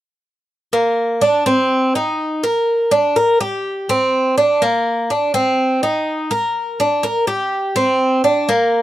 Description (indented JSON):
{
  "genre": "latin",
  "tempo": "124 BPM",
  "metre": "4/4",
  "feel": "straight",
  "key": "unclear",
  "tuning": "A4 = 438 Hz",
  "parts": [
    { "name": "Cuban tres", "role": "arpeggios", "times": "0.7-8.8 s", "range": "Bb3 to Bb4", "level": "-14 LUFS", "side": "equal", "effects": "none" }
  ],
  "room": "moderate booth ambience, RT60 0.2 s",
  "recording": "dry, close 1970s-style studio recording",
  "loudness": "-15 LUFS",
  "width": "side -14 dB against mid",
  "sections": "0.7-8.8 A section",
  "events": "none",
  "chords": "none"
}